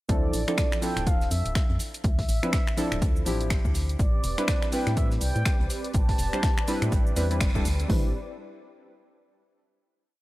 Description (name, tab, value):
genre	deep house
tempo	123 BPM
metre	4/4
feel	swing 59% on 16ths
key	A minor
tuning	A4 = 440 Hz
part	mellow horn-like synth lead	melody	0.1-7.4 s	D5 to A5	-34 LUFS	equal	chorus, phaser, tape echo
part	deep mellow chord stab	stabs	0.1-8.1 s	F3 to C5	-31 LUFS	equal	chorus, sidechain pumping, tape echo
part	organ-like FM bass	bass	0.1-8.1 s	D1 to A2	-28 LUFS	equal	sidechain pumping
part	damped 70s drum kit	drums	0.1-7.8 s	hi-hat, snare drum	-44 LUFS	right 2 dB	none
part	deep house drum kit	drums	0.1-8.0 s	hi-hat, kick drum, toms	-25 LUFS	equal	overdrive
part	deep house drum kit	drums	0.1-7.9 s	finger snaps, hi-hat, shaker	-33 LUFS	equal	overdrive
part	warm analog pad	sustained chords	4.0-8.1 s	C4 to D5	-38 LUFS	right 1 dB	chorus, sidechain pumping
room	little or no reverb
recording	none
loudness	-23 LUFS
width	side -18 dB against mid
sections	0.1-7.9 drop; 7.9-9.8 final chord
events	drop 0.1-7.9; band accent 7.4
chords	0.1 Dm9; 4.0 Am11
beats	| 0.09 0.58 1.07 1.55 | 2.04 2.53 3.02 3.51 | 3.99 4.48 4.97 5.46 | 5.95 6.43 6.92 7.41 | 7.90